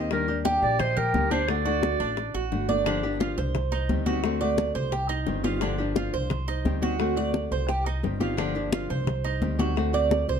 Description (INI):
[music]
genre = latin, Cuban son and guajira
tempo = 174 BPM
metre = 4/4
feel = straight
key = G minor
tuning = A4 = 440 Hz
[part]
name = nylon-string guitar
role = accompaniment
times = 0.0-10.4 s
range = D3 to G4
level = -30 LUFS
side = left 6 dB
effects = none
[part]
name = Cuban tres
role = arpeggios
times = 0.0-10.4 s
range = D4 to Eb5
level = -29 LUFS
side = right 6 dB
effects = none
[part]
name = upright bass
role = bass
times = 0.0-10.4 s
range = G1 to Eb2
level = -29 LUFS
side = equal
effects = none
[part]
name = warm clarinet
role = melody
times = 0.1-2.5 s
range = Bb4 to D5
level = -27 LUFS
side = right 3 dB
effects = none
[part]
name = bongos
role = percussion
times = 0.1-10.4 s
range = none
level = -34 LUFS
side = left 10 dB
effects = none
[part]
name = congas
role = percussion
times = 0.1-10.4 s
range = none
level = -31 LUFS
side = left 3 dB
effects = none
[sound]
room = light reverb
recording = dark, warm production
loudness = -24 LUFS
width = side -7 dB against mid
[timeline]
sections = 0.0-2.9 A section; 2.9-10.4 B section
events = none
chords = 0.1 Ebmaj7; 1.5 D; 2.9 Gm7; 3.6 Cm; 4.2 D7; 4.9 Cm; 5.6 Gm7; 6.3 Cm; 7.0 D7; 7.7 Cm; 8.4 Gm7; 9.1 Cm; 9.8 D7